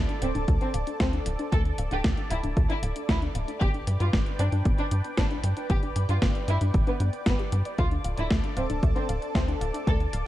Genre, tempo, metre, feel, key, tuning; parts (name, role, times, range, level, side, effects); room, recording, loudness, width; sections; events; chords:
italo disco; 115 BPM; 4/4; straight; A4 = 441 Hz
lush unison pad; sustained chords; 0.0-10.3 s; A4 to D6; -36 LUFS; equal; chorus, phaser
tight sequencer bass; bass; 0.0-10.2 s; D1 to G2; -27 LUFS; equal
analog pluck; arpeggios; 0.1-10.3 s; A3 to G5; -37 LUFS; left 3 dB; chorus, tape echo
gated 80s digital drum machine; drums; 0.1-10.2 s; hi-hat, snare drum; -33 LUFS; equal; gated reverb, gated reverb snare
dark studio violin section; melody; 0.2-10.0 s; B3 to A4; -34 LUFS; right 1 dB; tape echo
electronic kick drum; drums; 0.5-10.0 s; -26 LUFS; equal
light reverb; dark, warm production; -24 LUFS; side -14 dB against mid
0.0-10.3 A section
filter sweep on synth arpeggio sound 0.0-10.3
0.0 Dm; 3.6 G; 7.8 Dm